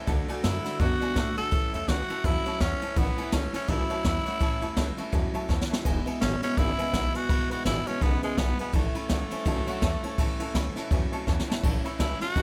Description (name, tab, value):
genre	rockabilly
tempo	166 BPM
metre	4/4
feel	swing 59% on 8ths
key	A major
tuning	A4 = 440 Hz
part	picked steel-string acoustic guitar	accompaniment	0.0-12.4 s	E2 to F#4	-39 LUFS	equal	none
part	warm upright piano	accompaniment	0.0-12.4 s	B4 to B5	-42 LUFS	equal	none
part	electric guitar through a small old amp	riff	0.0-12.4 s	E2 to B3	-38 LUFS	equal	subtle chorus
part	upright bass	bass	0.1-12.4 s	E1 to A2	-33 LUFS	equal	none
part	jazz brush drum kit	drums	0.1-12.4 s	crash cymbal, kick drum, ride cymbal, snare drum, splash cymbal	-31 LUFS	equal	none
part	growling tenor saxophone	melody	0.4-12.4 s	G#3 to A4	-34 LUFS	equal	none
room	little or no reverb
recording	none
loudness	-27 LUFS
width	mono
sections	0.0-11.6 A section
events	drum fill 5.5-5.8, 11.3-11.6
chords	0.1 D; 1.5 A; 5.8 E; 8.7 A